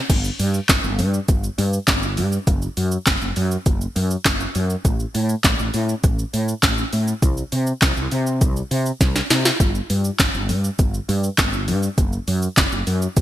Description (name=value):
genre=dance-pop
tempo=101 BPM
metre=4/4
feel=straight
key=unclear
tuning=A4 = 440 Hz
part: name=woody fretless electric bass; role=bass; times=0.1-13.2 s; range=F#1 to C3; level=-21 LUFS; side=equal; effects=analog chorus, sidechain pumping
part: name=smooth R&B drum kit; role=drums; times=0.1-13.2 s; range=crash cymbal, handclaps, hi-hat, kick drum, shaker, snare drum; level=-19 LUFS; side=equal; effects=overdrive, gated reverb
room=light reverb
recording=bright 1980s-style digital production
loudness=-18 LUFS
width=side -13 dB against mid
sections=0.1-13.2 A section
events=drum fill 9.0-9.6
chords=none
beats=| 0.10 0.69 1.28 1.88 | 2.47 3.07 3.66 4.25 | 4.85 5.44 6.04 6.63 | 7.23 7.82 8.41 9.01 | 9.60 10.20 10.79 11.38 | 11.98 12.57 13.17